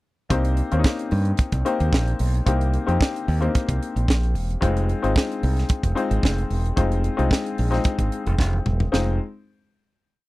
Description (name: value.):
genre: disco.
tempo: 111 BPM.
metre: 4/4.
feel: straight.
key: F minor.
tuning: A4 = 440 Hz.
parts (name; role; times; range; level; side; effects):
clear baby grand piano; accompaniment; 0.3-9.2 s; Ab3 to C5; -25 LUFS; left 4 dB; none.
modern bright fingered electric bass; bass; 0.3-9.2 s; E1 to G2; -22 LUFS; right 1 dB; none.
tight funk drum kit; drums; 0.3-9.1 s; hi-hat, kick drum, snare drum, toms; -21 LUFS; right 1 dB; none.
room: little or no reverb.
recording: dry, close 1970s-style studio recording.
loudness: -20 LUFS.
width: side -19 dB against mid.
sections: 0.3-8.9 verse; 8.9-10.3 final chord.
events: drum fill 8.4-8.9.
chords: 0.3 Cm7; 4.6 Fm7.